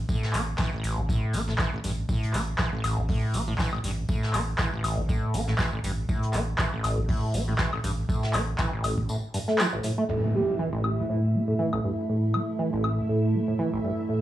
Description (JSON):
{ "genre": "acid house", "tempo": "120 BPM", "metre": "4/4", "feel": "swing 55% on 16ths", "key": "A minor", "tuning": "A4 = 439 Hz", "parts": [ { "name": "round analog bass", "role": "bass", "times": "0.0-9.1 s", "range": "A1", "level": "-29 LUFS", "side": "equal", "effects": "sidechain pumping" }, { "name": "acid bass, saw", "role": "riff", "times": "0.1-14.2 s", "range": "A1 to C4", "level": "-28 LUFS", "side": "equal", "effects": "overdrive, analog chorus, cassette tape, sidechain pumping, analog delay" }, { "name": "electronic kick drum", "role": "drums", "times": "0.1-9.1 s", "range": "none", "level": "-28 LUFS", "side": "equal", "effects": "overdrive" }, { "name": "jazz brush drum kit", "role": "drums", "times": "0.1-10.0 s", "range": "hi-hat, snare drum, tambourine", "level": "-40 LUFS", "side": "left 1 dB", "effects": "high-pass filter on hats, high-pass filter on snare, high-pass filter on perc, high-pass filter on room" }, { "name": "booming analog drum machine", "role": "drums", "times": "0.3-13.0 s", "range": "handclaps, hi-hat, woodblock", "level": "-30 LUFS", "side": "left 1 dB", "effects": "overdrive, low-pass filter on snare, low-pass filter on hats, low-pass filter on perc, low-pass filter on room" }, { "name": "string machine, full ensemble", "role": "sustained chords", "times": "10.1-14.2 s", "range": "A3 to E5", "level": "-29 LUFS", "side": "right 2 dB", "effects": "ensemble chorus, sidechain pumping" }, { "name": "impact", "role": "sound effects", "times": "10.1-12.1 s", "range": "none", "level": "-35 LUFS", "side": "right 1 dB", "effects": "none" }, { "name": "breathy flute-like synth lead", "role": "melody", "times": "10.3-11.2 s", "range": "E4 to G4", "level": "-31 LUFS", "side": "right 3 dB", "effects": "analog chorus, tape echo" } ], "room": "light reverb", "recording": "dry, gritty hardware recording, cassette tape, small room reverb", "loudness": "-24 LUFS", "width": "side -13 dB against mid", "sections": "0.0-10.1 A section; 10.1-14.2 B section", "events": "band accent 9.6; impact 10.1-12.1", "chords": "0.0 A5" }